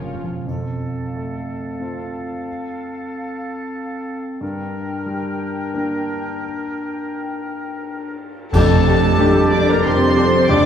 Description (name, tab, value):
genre	cinematic, emotional film score for orchestra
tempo	85-94 BPM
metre	3/4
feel	rubato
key	F major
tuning	A4 = 441 Hz
part	warm studio violin section	melody	0.0-0.1, 8.5-10.7 s	Bb4 to D6	-23 LUFS	equal	none
part	dark studio violin section	second line	0.0-0.3, 8.5-10.7 s	F4 to D5	-26 LUFS	left 2 dB	none
part	warm grand piano	accompaniment	0.0-10.7 s	F1 to G4	-22 LUFS	right 1 dB	none
part	warm studio viola section	accompaniment	0.0-0.3, 8.5-10.6 s	F3 to G4	-26 LUFS	equal	none
part	rich studio double bass section	bass	0.0-0.5, 8.5-10.7 s	E1 to F2	-24 LUFS	right 5 dB	none
part	warm studio cello section	bass	0.0-0.5, 8.5-10.7 s	F2 to D4	-22 LUFS	right 1 dB	none
part	mellow clarinet	second line	0.5-10.7 s	C4 to G4	-27 LUFS	left 2 dB	none
part	mellow small flute group	second line	0.5-10.7 s	A4 to G5	-27 LUFS	left 6 dB	none
part	warm oboe	second line	0.5-10.7 s	A4 to D5	-29 LUFS	right 1 dB	none
part	triangle, cymbal swell, clash cymbals and concert bass drum	percussion	0.5-9.8 s	none	-27 LUFS	right 1 dB	none
part	dark French horn section	sustained chords	8.5-10.7 s	D4 to A4	-24 LUFS	left 3 dB	none
part	timpani	percussion	8.5-9.5 s	F2	-23 LUFS	right 1 dB	none
room	wet scoring stage reverb, RT60 1.9 s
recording	heard from further back in the room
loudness	-18 LUFS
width	side -8 dB against mid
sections	0.5-8.5 A section; 8.5-10.7 B section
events	band accent 8.5-9.2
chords	0.5 F; 4.4 Gm; 8.5 Gsus2/F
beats	| 0.48 1.15 1.81 | 2.47 3.13 3.77 | 4.41 5.07 5.74 | 6.43 7.14 7.84 | 8.53 9.18 9.84 | 10.50